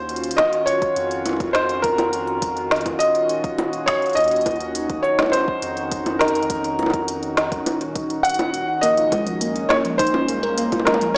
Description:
IDM; 103 BPM; 4/4; straight; A4 = 440 Hz
felt-muted upright piano; melody; 0.0-11.2 s; Bb4 to Gb5; -20 LUFS; equal; tape echo
warbly tape-like pad; sustained chords; 0.0-11.2 s; Bb2 to Gb4; -26 LUFS; equal; chorus, built-in reverb, vintage 12-bit sampler grit
round analog bass; bass; 0.0-11.2 s; Eb1 to F2; -36 LUFS; equal; tube saturation
organic electronic drum kit; drums; 0.1-11.1 s; bongos, hi-hat, snare drum; -23 LUFS; equal; overdrive
electronic kick drum; drums; 0.4-10.8 s; -31 LUFS; equal; overdrive
harp-like synth pluck; arpeggios; 8.8-11.1 s; F3 to Bb4; -24 LUFS; equal; chorus
moderate echo chamber reverb, RT60 2.0 s; dry, gritty hardware recording, cassette tape, small speaker sound; -18 LUFS; side -38 dB against mid
0.0-8.8 A section; 8.8-11.2 B section
kick drops out 8.2-8.8
0.0 Ebm9; 8.8 Bbm9

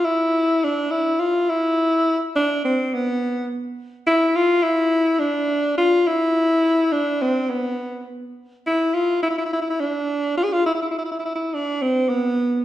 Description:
turkish; 104 BPM; 4/4; straight; A4 = 436 Hz
breathy alto saxophone; solo; 0.0-12.6 s; B3 to G#4; -18 LUFS; equal
wet recital hall reverb, RT60 1.6 s; recorded in a church or concert hall; -18 LUFS; side -13 dB against mid
0.0-12.6 A section

